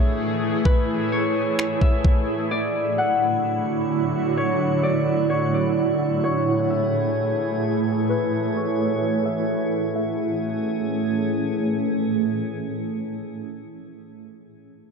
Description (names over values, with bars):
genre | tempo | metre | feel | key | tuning
hip hop, atmospheric cloud-rap | 129 BPM | 4/4 | half-time | A major | A4 = 441 Hz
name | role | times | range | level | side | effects
Celtic harp | melody | 0.0-11.7 s | B4 to F#5 | -26 LUFS | left 2 dB | low-pass filter, ping-pong delay
shimmering ambient pad | sustained chords | 0.0-13.9 s | A2 to G#4 | -23 LUFS | right 2 dB | chorus, built-in reverb, sidechain pumping, low-pass filter
drifting glass-harmonics texture | texture | 0.0-13.9 s | A3 to F#5 | -31 LUFS | left 2 dB | chorus, built-in reverb
smooth R&B drum kit | drums | 0.7-2.2 s | finger snaps, kick drum | -18 LUFS | equal | none
room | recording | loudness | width
light reverb | dark, warm production | -20 LUFS | side -5 dB against mid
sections
0.0-10.0 A section; 10.0-13.7 B section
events
break 0.0-2.5; filter sweep 0.0-10.0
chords
0.0 Amaj7; 2.5 Dmaj7; 6.2 Amaj7